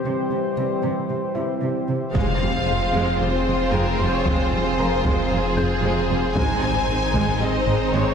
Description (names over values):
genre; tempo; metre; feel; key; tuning
cinematic, hybrid orchestral and electronic film score; 114 BPM; 4/4; straight; F minor; A4 = 442 Hz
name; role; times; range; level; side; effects
dark French horn section; sustained chords; 0.0-1.9 s; G3; -29 LUFS; left 3 dB; none
warbly tape-like pad; sustained chords; 0.0-8.1 s; Eb3 to C5; -26 LUFS; equal; chorus, built-in reverb
dark symphonic cello section; bass; 0.0-8.0 s; F2 to C3; -29 LUFS; right 3 dB; none
felt-muted upright piano; texture; 0.0-8.1 s; E4 to G6; -34 LUFS; left 1 dB; none
warm symphonic violin section; melody; 2.1-8.1 s; Ab4 to Ab5; -26 LUFS; left 2 dB; none
warm symphonic violin section; second line; 2.1-8.1 s; Eb4 to C5; -27 LUFS; left 1 dB; none
warm symphonic viola section; accompaniment; 2.1-8.1 s; G3 to C4; -28 LUFS; right 1 dB; none
dark symphonic double bass section; bass; 2.1-8.0 s; F1 to Ab1; -30 LUFS; right 3 dB; none
taiko ensemble; drums; 2.1-7.6 s; none; -27 LUFS; equal; none
impact; sound effects; 2.1-4.3 s; none; -29 LUFS; equal; none
detuned saw bass; bass; 2.2-8.1 s; F1 to Ab1; -27 LUFS; equal; none
room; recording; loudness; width
wet scoring stage reverb, RT60 1.9 s; heard from further back in the room; -19 LUFS; side -7 dB against mid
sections
0.0-2.1 A section; 2.1-8.1 A section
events
impact 2.1-4.3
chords
0.0 C; 2.1 Fm; 6.4 Ab